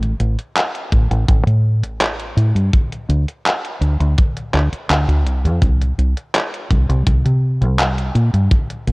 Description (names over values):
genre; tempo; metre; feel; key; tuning
vaporwave; 83 BPM; 4/4; straight; unclear; A4 = 437 Hz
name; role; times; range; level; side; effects
deep dub fingered electric bass; bass; 0.0-8.9 s; A1 to C3; -15 LUFS; equal; none
detuned 8-bit digital drum machine; drums; 0.0-8.9 s; handclaps, hi-hat; -21 LUFS; equal; overdrive, vintage 12-bit sampler grit
kick drum; drums; 0.9-8.7 s; none; -17 LUFS; equal; vintage 12-bit sampler grit
room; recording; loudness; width
little or no reverb; worn, warbling old tape, cassette tape, warbly pitch drift; -15 LUFS; side -28 dB against mid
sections
0.0-8.9 A section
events
none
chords
none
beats
0.56 1.29 2.01 | 2.73 3.45 4.18 4.90 | 5.62 6.35 7.07 7.79 | 8.51